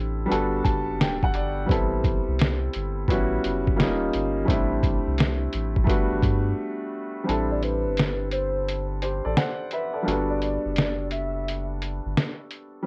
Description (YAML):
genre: lo-fi hip hop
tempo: 86 BPM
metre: 4/4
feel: swing 66% on 16ths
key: A dorian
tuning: A4 = 440 Hz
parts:
  - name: warm upright piano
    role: accompaniment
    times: 0.0-12.9 s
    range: G3 to A5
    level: -29 LUFS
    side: equal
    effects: none
  - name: soft dub sub bass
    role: bass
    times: 0.0-12.2 s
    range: D1 to G2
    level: -32 LUFS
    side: equal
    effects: none
  - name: lo-fi sampler-style drum kit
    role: drums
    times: 0.3-12.7 s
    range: hi-hat, kick drum, snare drum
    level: -27 LUFS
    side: equal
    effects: none
  - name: warbly nostalgic lead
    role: melody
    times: 7.5-11.7 s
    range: B4 to E5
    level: -32 LUFS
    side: equal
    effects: chorus, tremolo, plate reverb
room: light reverb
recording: worn, warbling old tape, cassette tape, warbly pitch drift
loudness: -25 LUFS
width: mono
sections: 0.0-7.3 A section; 7.3-12.9 B section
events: break 6.6-7.3, 7.3-12.9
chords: 0.3 Gmaj9; 1.7 Am7; 3.1 A13; 3.8 D#9; 4.5 D7sus4/A; 5.9 Gmaj9; 7.3 Am11; 10.1 Gmaj9